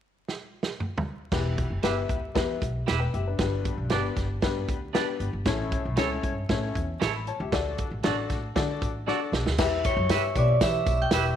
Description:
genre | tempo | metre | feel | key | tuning
uptempo 1960s-style soul | 116 BPM | 4/4 | straight | E dorian | A4 = 437 Hz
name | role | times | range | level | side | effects
natural country drum kit | drums | 0.3-11.2 s | crash cymbal, hi-hat, kick drum, snare drum, toms | -29 LUFS | right 2 dB | none
clear upright piano | accompaniment | 1.3-11.4 s | G2 to B5 | -30 LUFS | left 8 dB | none
upright bass | bass | 1.3-11.3 s | E1 to E3 | -29 LUFS | equal | none
twangy electric guitar | stabs | 1.8-11.2 s | C#4 to E5 | -32 LUFS | right 10 dB | none
tambourine | percussion | 9.6-11.2 s | none | -42 LUFS | left 12 dB | none
vibraphone with medium hard mallets | melody | 9.9-11.4 s | C#5 to G5 | -26 LUFS | equal | tape echo
glockenspiel with hard plastic mallets | second line | 9.9-11.4 s | C#6 to G6 | -34 LUFS | right 11 dB | none
room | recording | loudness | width
light reverb, small room ambience | 1960s-style stereo with parts hard left and right, vinyl crackle, lossy compression artefacts | -24 LUFS | side -9 dB against mid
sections
0.0-1.3 A section; 1.3-9.6 B section; 9.6-11.4 C section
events
drum fill 0.3-1.3, 9.1-9.6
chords
0.0 N.C.; 1.3 Em; 3.4 G; 5.5 A; 7.5 D; 9.6 Em

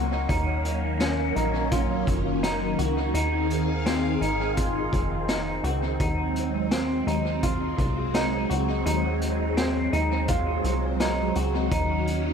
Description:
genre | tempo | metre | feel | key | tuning
dream pop | 84 BPM | 4/4 | straight | unclear | A4 = 441 Hz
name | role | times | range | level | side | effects
phased string machine | sustained chords | 0.0-12.3 s | Eb3 to F5 | -28 LUFS | equal | ensemble chorus, phaser
semi-hollow electric guitar | arpeggios | 0.0-12.3 s | C4 to Gb4 | -28 LUFS | equal | lush chorus, tape echo
plucky analog bass | bass | 0.0-12.3 s | F1 to Eb2 | -29 LUFS | equal | none
raw garage drum kit | drums | 0.3-12.2 s | hi-hat, kick drum, snare drum | -30 LUFS | equal | tape echo
room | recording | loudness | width
light reverb, studio ambience | echo-heavy mix | -23 LUFS | side -6 dB against mid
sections
0.0-12.3 A section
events
none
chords
0.3 Ebm7; 3.1 Dbmaj9 (rootless); 6.0 Ab7; 11.7 Ebm7

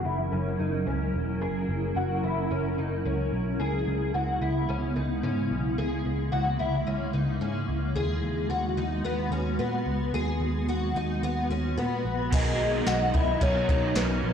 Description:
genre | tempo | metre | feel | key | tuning
dream pop | 110 BPM | 4/4 | straight | unclear | A4 = 439 Hz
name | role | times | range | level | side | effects
granular cloud pad | sustained chords | 0.0-14.3 s | C#3 to A#4 | -30 LUFS | equal | built-in reverb, low-pass filter
picked twelve-string acoustic guitar | arpeggios | 0.0-14.3 s | B3 to G#4 | -32 LUFS | left 3 dB | ensemble chorus, low-pass filter, tape echo
vintage muted picked electric bass | bass | 0.0-14.3 s | E1 to B2 | -30 LUFS | equal | none
hollow clarinet-like synth lead | melody | 12.3-14.3 s | B4 to D#5 | -29 LUFS | left 1 dB | chorus, tape echo
crunchy overdriven guitar | accompaniment | 12.3-14.3 s | B2 to A#4 | -32 LUFS | right 5 dB | harmonic tremolo, ensemble chorus
soft vintage rhythm box | drums | 12.3-14.1 s | crash cymbal, hi-hat, kick drum, snare drum, tambourine | -27 LUFS | right 1 dB | none
room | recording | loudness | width
light reverb, digital ambience | played on a big sound system in a bare room, stone room reverb | -25 LUFS | side -8 dB against mid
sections
0.0-12.3 A section; 12.3-14.3 B section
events
filter sweep 0.0-12.3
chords
0.0 F#7; 3.6 C#m7; 8.0 G#m7; 12.3 Bmaj7

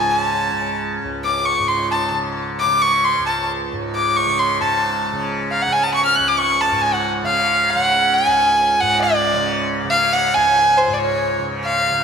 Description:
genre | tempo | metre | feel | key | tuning
indian classical, Hindustani | 136 BPM | 5/4 | straight | C# raga bhairav | A4 = 440 Hz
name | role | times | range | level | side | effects
rich violin | melody | 0.0-12.0 s | B#4 to F#6 | -16 LUFS | equal | ping-pong delay
tanpura | drone | 0.0-12.0 s | C#2 to C#3 | -24 LUFS | right 1 dB | none
room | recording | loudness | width
wet lush hall reverb, RT60 2.8 s | dreamy mix soaked in reverb | -15 LUFS | side -6 dB against mid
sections
0.0-4.6 A section; 4.6-12.0 B section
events
speeding up 0.0-12.0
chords
none

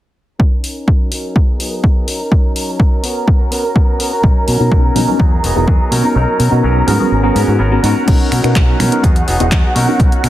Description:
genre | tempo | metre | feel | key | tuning
filtered disco house | 125 BPM | 4/4 | straight | B major | A4 = 439 Hz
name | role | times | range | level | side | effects
dark studio violin section | sustained chords | 0.4-10.3 s | F#4 to A#5 | -21 LUFS | right 2 dB | sidechain pumping, low-pass filter
direct-recorded clean electric guitar | riff | 0.4-10.3 s | F#3 to A#4 | -22 LUFS | left 1 dB | sidechain pumping, low-pass filter
electronic kick drum | drums | 0.4-10.1 s | none | -12 LUFS | equal | overdrive
punchy analog drum machine | drums | 0.6-10.3 s | crash cymbal, finger snaps, handclaps, hi-hat | -22 LUFS | left 1 dB | overdrive, sidechain pumping on hats, sidechain pumping on cymbals
growling fingered electric bass | bass | 4.2-10.3 s | E1 to B2 | -15 LUFS | equal | overdrive, sidechain pumping, low-pass filter
tambourine and congas | percussion | 4.2-10.2 s | none | -24 LUFS | right 2 dB | none
bell-like tine electric piano | accompaniment | 4.6-10.0 s | B3 to A#4 | -17 LUFS | equal | fast stereo tremolo, phaser, sidechain pumping, low-pass filter
room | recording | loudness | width
little or no reverb | heavily compressed radio sound | -11 LUFS | side -14 dB against mid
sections
0.4-8.1 A section; 8.1-10.3 B section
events
filter sweep 0.4-8.1; kick drops out 6.2-8.1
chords
0.4 F#6; 1.4 G#m9/F#; 2.1 F#6; 3.0 F#add11/B; 4.2 Bmaj9; 5.2 Emaj9; 5.9 Bmaj9; 6.9 G#m11; 8.1 Bmaj9; 9.0 Emaj9; 9.8 Bmaj9

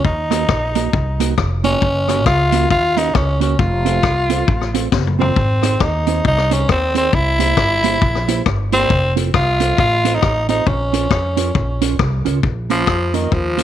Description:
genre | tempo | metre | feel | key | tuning
ska | 136 BPM | 4/4 | swing 60% on 8ths | Bb minor | A4 = 442 Hz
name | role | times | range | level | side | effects
growling tenor saxophone | melody | 0.0-13.6 s | Eb3 to F4 | -18 LUFS | equal | none
upright bass | bass | 0.0-13.6 s | F1 to F2 | -20 LUFS | equal | none
vintage drum kit | drums | 0.0-13.6 s | hi-hat, kick drum, rim click, snare drum, toms | -20 LUFS | left 4 dB | none
mellow electric guitar | accompaniment | 0.3-13.6 s | Bb3 to Db5 | -23 LUFS | right 12 dB | tape echo
room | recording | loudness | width
light reverb, studio reverb | 1960s-style stereo | -14 LUFS | side -10 dB against mid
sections
0.0-12.4 A section; 12.4-13.6 B section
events
drum fill 4.9-5.4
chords
0.0 Ebm; 1.8 Gb; 3.6 F; 5.4 Ab; 7.1 C7; 8.9 F; 10.7 Bbm

